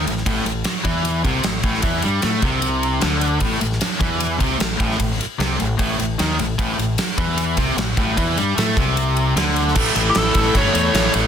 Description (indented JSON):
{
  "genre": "hard rock",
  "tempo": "152 BPM",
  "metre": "4/4",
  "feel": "straight",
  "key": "unclear",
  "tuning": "A4 = 441 Hz",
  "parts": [
    { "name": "distorted electric guitar", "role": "riff", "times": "0.0-11.3 s", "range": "A2 to A3", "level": "-24 LUFS", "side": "right 12 dB", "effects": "overdrive" },
    { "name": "overdriven electric guitar", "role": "riff", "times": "0.0-11.3 s", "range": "A2 to A3", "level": "-23 LUFS", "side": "left 9 dB", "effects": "none" },
    { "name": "growling fingered electric bass", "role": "bass", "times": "0.0-11.3 s", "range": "G1 to A2", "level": "-23 LUFS", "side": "equal", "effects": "overdrive" },
    { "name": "gated 80s drum kit", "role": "drums", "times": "0.1-11.2 s", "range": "crash cymbal, kick drum, ride cymbal, snare drum", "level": "-21 LUFS", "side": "right 1 dB", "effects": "none" },
    { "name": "biting lead guitar", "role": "melody", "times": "10.1-11.1 s", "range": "G4 to C#5", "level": "-20 LUFS", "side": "left 1 dB", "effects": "overdrive" },
    { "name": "smooth overdriven lead guitar", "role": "second line", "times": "10.1-11.1 s", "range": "E4 to A4", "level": "-28 LUFS", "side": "right 2 dB", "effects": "none" }
  ],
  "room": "light reverb",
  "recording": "dense, heavily limited modern master",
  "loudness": "-17 LUFS",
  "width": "side -8 dB against mid",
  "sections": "0.0-9.8 A section; 9.8-11.3 B section",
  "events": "none",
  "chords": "0.0 A5; 9.8 A",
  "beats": "| 0.26 0.66 1.05 1.45 | 1.84 2.24 2.63 3.03 | 3.42 3.82 4.21 4.61 | 5.01 5.40 5.80 6.20 | 6.59 6.99 7.39 7.78 | 8.18 8.57 8.97 9.37 | 9.76 10.16 10.55 10.94"
}